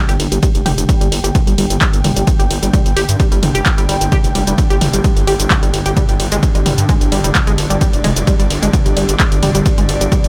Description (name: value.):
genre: driving peak-time techno.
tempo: 130 BPM.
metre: 4/4.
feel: straight.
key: unclear.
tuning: A4 = 440 Hz.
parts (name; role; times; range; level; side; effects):
swarming drone; drone; 0.2-10.3 s; G2 to D3; -27 LUFS; equal; built-in reverb, sidechain pumping.
ethereal airy pad; texture; 0.2-10.3 s; D4 to G5; -27 LUFS; equal; ensemble chorus, built-in reverb, phaser, sidechain pumping.
tight sequenced synth; riff; 0.1-10.2 s; G3 to G4; -23 LUFS; equal; chorus, tube saturation, sidechain pumping, digital delay.
gritty driven synth bass; bass; 0.1-10.3 s; F1 to G2; -21 LUFS; equal; sidechain pumping.
punchy analog drum machine; drums; 0.1-10.3 s; handclaps, hi-hat, ride cymbal, shaker, toms; -22 LUFS; equal; sidechain pumping on hats, sidechain pumping on toms, sidechain pumping on perc, sidechain pumping on cymbals.
electronic kick drum; drums; 0.4-10.2 s; none; -17 LUFS; equal; none.
room: light reverb.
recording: none.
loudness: -14 LUFS.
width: mono.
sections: 0.0-10.3 A section.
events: none.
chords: 0.0 G5.